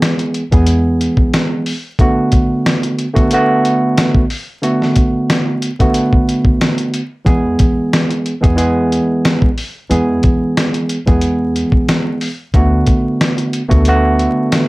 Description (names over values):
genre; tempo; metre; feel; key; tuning
hip hop, boom-bap hip-hop; 91 BPM; 4/4; swing 54% on 16ths; B dorian; A4 = 440 Hz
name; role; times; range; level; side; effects
tine electric piano; accompaniment; 0.0-14.7 s; D3 to G#4; -14 LUFS; right 1 dB; high-pass filter, low-pass filter
dusty soul sampler-style drum kit; drums; 0.0-14.7 s; hi-hat, kick drum, snare drum; -14 LUFS; equal; none
upright bass; bass; 0.5-1.1, 7.3-14.3 s; D2 to E2; -16 LUFS; equal; none
room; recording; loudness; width
moderate small room ambience, RT60 0.5 s; vinyl crackle; -12 LUFS; side -21 dB against mid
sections
0.0-14.7 A section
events
none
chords
0.0 E; 2.0 Bm7/D; 7.3 E; 12.5 Bm7/D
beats
0.01 0.67 1.33 | 1.99 2.65 3.31 3.97 | 4.63 5.29 5.95 6.61 | 7.27 7.92 8.58 9.24 | 9.90 10.56 11.22 11.88 | 12.54 13.20 13.86 14.52